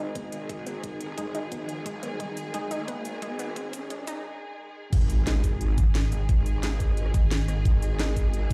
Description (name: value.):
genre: dark technical drum and bass.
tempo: 176 BPM.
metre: 4/4.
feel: straight.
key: unclear.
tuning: A4 = 436 Hz.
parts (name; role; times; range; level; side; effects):
rich studio string section; sustained chords; 0.0-8.5 s; D#3 to G#4; -40 LUFS; equal; vintage 12-bit sampler grit, sidechain pumping.
analog pluck; arpeggios; 0.0-4.1 s; G#3 to D#4; -40 LUFS; equal; chorus, sidechain pumping, tape echo.
orchestra-hit-like synth stab; stabs; 0.0-8.5 s; G#3 to G#4; -41 LUFS; equal; built-in reverb, tape echo.
growl bass; bass; 0.0-8.5 s; G#1; -33 LUFS; equal; chorus, overdrive, sidechain pumping, high-pass filter.
riser and impact; sound effects; 2.4-6.3 s; none; -36 LUFS; equal; none.
ethereal airy pad; texture; 0.1-8.5 s; D#4 to D#5; -47 LUFS; equal; none.
drum and bass drum kit; drums; 0.2-8.5 s; crash cymbal, hi-hat, rim click, shaker, snare drum; -38 LUFS; equal; none.
electronic kick drum; drums; 0.2-8.5 s; none; -27 LUFS; equal; high-pass filter on kick, high-pass filter on room.
pulsing pluck wobble bass; bass; 5.8-8.5 s; G#1; -27 LUFS; equal; chorus.
room: light reverb, digital ambience.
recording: played on a big sound system in a bare room, large studio reverb, high-pass filter.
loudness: -27 LUFS.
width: mono.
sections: 0.0-4.9 A section; 4.9-8.5 B section.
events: build-up 0.0-4.9; filter sweep on synth arpeggio sound 0.0-4.9; riser 2.4-4.2; drum fill 2.2-4.2; drop 4.9-8.5; impact 4.9-6.3.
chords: 0.0 G#5.